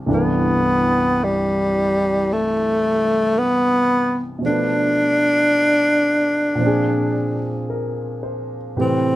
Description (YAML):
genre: jazz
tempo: 55 BPM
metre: 4/4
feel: swing 67% on 8ths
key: C major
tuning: A4 = 440 Hz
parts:
  - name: warm concert grand piano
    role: accompaniment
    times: 0.0-9.2 s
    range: C2 to C5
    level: -22 LUFS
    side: equal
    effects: none
  - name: clear tenor saxophone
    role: melody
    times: 0.1-9.2 s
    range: G3 to D4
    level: -17 LUFS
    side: equal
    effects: none
room: moderate club reverb, RT60 0.7 s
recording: none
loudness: -16 LUFS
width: side -15 dB against mid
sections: 0.1-9.2 A section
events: none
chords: 0.1 Cmaj13; 4.4 Bm7b5; 6.6 Bb9